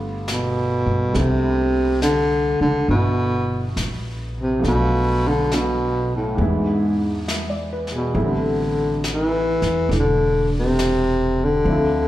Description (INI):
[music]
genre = jazz ballad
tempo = 68 BPM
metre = 4/4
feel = swing 68% on 8ths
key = C major, A minor from 8.2 s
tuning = A4 = 437 Hz
[part]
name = clear grand piano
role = accompaniment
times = 0.0-12.1 s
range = E3 to E5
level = -27 LUFS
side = right 1 dB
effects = slapback echo
[part]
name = upright bass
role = bass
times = 0.0-12.1 s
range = E1 to G2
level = -24 LUFS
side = equal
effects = none
[part]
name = mellow baritone saxophone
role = melody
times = 0.3-12.1 s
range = G#2 to E3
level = -20 LUFS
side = equal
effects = slapback echo
[part]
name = jazz brush drum kit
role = drums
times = 0.3-12.1 s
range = brushed snare drum, hi-hat, snare drum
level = -32 LUFS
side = left 1 dB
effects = none
[sound]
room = light reverb, small room ambience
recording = live gig heard through the venue's PA, club reverb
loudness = -18 LUFS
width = side -14 dB against mid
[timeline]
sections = 0.0-8.2 A section; 8.2-12.1 B section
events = none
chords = 0.0 G7; 1.1 Cmaj13; 4.6 Bm7b5; 6.4 E7; 8.2 Am7